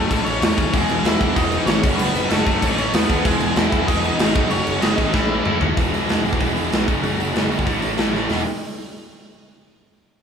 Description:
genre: punk rock.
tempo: 190 BPM.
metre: 4/4.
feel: straight.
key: E major.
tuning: A4 = 444 Hz.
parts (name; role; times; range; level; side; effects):
nasal lead guitar with a parked wah; melody; 0.0-5.6 s; G#3 to E5; -24 LUFS; left 1 dB; overdrive.
distorted electric guitar; riff; 0.0-8.4 s; E3 to A4; -24 LUFS; left 8 dB; distortion.
fuzz picked electric bass; bass; 0.0-8.4 s; E1 to F#2; -25 LUFS; equal; overdrive.
big rock drum kit; drums; 0.1-8.4 s; crash cymbal, hi-hat, kick drum, snare drum, toms; -20 LUFS; equal; none.
distorted electric guitar; riff; 0.7-8.4 s; E2 to A3; -25 LUFS; right 9 dB; overdrive.
room: light reverb.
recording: band playing live in one room.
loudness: -16 LUFS.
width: side -7 dB against mid.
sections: 0.0-5.8 A section; 5.8-8.3 B section; 8.3-9.6 C section.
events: drum fill 5.1-5.8, 8.1.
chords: 0.1 A; 0.7 E; 1.8 F#m; 2.6 A; 3.2 E; 4.3 F#m; 5.1 A; 5.8 E; 6.9 F#m; 7.7 A; 8.3 E5.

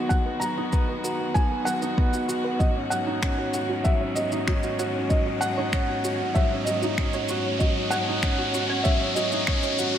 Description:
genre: piano and strings electronica.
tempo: 96 BPM.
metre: 4/4.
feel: straight.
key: unclear.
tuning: A4 = 439 Hz.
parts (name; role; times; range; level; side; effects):
felt-muted upright piano; melody; 0.0-10.0 s; D#5 to A#5; -29 LUFS; equal; low-pass filter.
warm string quartet; sustained chords; 0.0-10.0 s; G#2 to F#4; -32 LUFS; left 1 dB; low-pass filter.
warm upright piano; riff; 0.0-10.0 s; F#3 to F#4; -29 LUFS; right 2 dB; digital delay.
riser; sound effects; 0.0-10.0 s; none; -31 LUFS; equal; none.
analog pluck; arpeggios; 0.1-10.0 s; F#4 to C#5; -37 LUFS; right 2 dB; none.
electronic kick drum; drums; 0.1-9.6 s; none; -24 LUFS; equal; none.
electronic shaker and finger snaps; drums; 0.1-9.9 s; none; -33 LUFS; equal; none.
room: moderate scoring stage reverb, RT60 2.0 s, small room ambience.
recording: none.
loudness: -22 LUFS.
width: side -10 dB against mid.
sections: 0.0-10.0 A section.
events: build-up 0.0-10.0; riser 0.0-10.0; filter sweep on string quartet 0.0-10.0.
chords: 0.0 G#m7; 2.6 Badd9/G#.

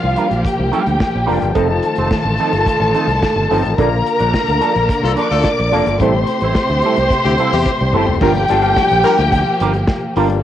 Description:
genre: disco.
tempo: 108 BPM.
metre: 4/4.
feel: straight.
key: G minor.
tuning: A4 = 440 Hz.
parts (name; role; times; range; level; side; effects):
warm studio string section; second line; 0.0-10.1 s; F4 to D6; -17 LUFS; equal; cassette tape.
mellow electric guitar; accompaniment; 0.0-10.3 s; F3 to C5; -20 LUFS; right 7 dB; wah, cassette tape.
overdriven clav; accompaniment; 0.0-10.4 s; F3 to F5; -22 LUFS; left 8 dB; auto-wah, cassette tape.
rich symphonic string section; sustained chords; 0.0-10.4 s; C3 to Bb4; -22 LUFS; left 1 dB; cassette tape.
modern bright fingered electric bass; bass; 0.0-10.4 s; F1 to E2; -19 LUFS; equal; none.
modern studio drum kit; drums; 0.2-10.4 s; crash cymbal, hi-hat, kick drum, snare drum, toms; -21 LUFS; equal; cassette tape.
clear horn section; stabs; 5.0-9.2 s; C4 to Bb4; -19 LUFS; left 7 dB; cassette tape.
room: light reverb, studio ambience.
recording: home recording on cassette.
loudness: -13 LUFS.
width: side -11 dB against mid.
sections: 0.0-8.2 A section; 8.2-10.4 B section.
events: clav fill 7.1-8.2; drum fill 7.7-8.2.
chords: 0.0 Gm7; 1.6 F7; 3.8 Bbmaj7; 6.0 Am7; 8.2 Gm7.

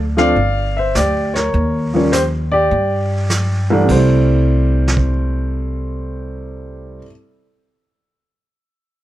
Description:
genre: jazz piano trio.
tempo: 102 BPM.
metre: 4/4.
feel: swing 68% on 8ths.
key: C major.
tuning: A4 = 440 Hz.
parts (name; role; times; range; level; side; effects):
upright bass; bass; 0.0-7.0 s; G1 to G2; -18 LUFS; equal; none.
warm upright piano; melody; 0.2-7.1 s; C2 to F5; -17 LUFS; equal; plate reverb.
vintage brush drum kit; drums; 0.2-5.1 s; brushed snare drum, crash cymbal, hi-hat, kick drum, snare drum; -25 LUFS; right 2 dB; none.
room: light reverb.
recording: none.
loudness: -14 LUFS.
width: side -14 dB against mid.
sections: 0.0-3.9 A section; 3.9-6.2 B section.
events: none.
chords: 0.4 G5; 1.5 Eb7; 2.7 G5; 3.9 C6.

